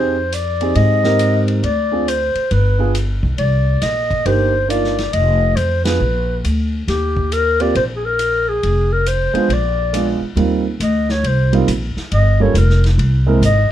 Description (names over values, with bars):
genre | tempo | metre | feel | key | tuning
jazz, small-group swing and bop | 138 BPM | 4/4 | swing 65% on 8ths | Eb major | A4 = 440 Hz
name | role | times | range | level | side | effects
dark clarinet | melody | 0.0-13.7 s | G4 to Eb5 | -18 LUFS | left 2 dB | none
warm grand piano | accompaniment | 0.0-13.4 s | G3 to Bb4 | -19 LUFS | right 5 dB | none
upright bass | bass | 0.0-13.7 s | F1 to Ab2 | -17 LUFS | equal | none
vintage drum kit | drums | 0.3-13.6 s | hi-hat, kick drum, ride cymbal, snare drum | -28 LUFS | left 1 dB | none
room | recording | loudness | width
moderate club reverb, RT60 0.5 s | dark, warm production | -14 LUFS | side -11 dB against mid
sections
0.0-10.4 A section; 10.4-13.7 B section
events
band accent 5.8; clarinet solo 10.4-13.7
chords
0.0 Fm9; 1.6 Dm7b5; 2.5 G7b9; 3.4 Cm9; 5.1 Fm7; 6.0 Bb; 6.9 Eb; 8.6 Fm; 9.5 Bb7b9; 10.4 Eb69; 12.1 Gm7b5; 13.0 C7b13